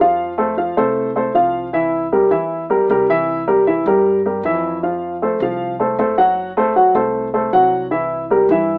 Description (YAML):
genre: Afro-Cuban jazz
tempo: 155 BPM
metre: 4/4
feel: straight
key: C mixolydian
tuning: A4 = 440 Hz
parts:
  - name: warm baby grand piano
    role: accompaniment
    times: 0.0-8.8 s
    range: E3 to F#5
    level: -17 LUFS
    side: equal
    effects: none
  - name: upright bass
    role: bass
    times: 0.0-8.8 s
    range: F#1 to G2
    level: -32 LUFS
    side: equal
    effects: none
room: light reverb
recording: small speaker sound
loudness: -17 LUFS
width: mono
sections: 0.0-8.8 A section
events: none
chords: 0.2 F; 1.7 C7; 4.8 F; 6.4 F#dim; 7.9 C7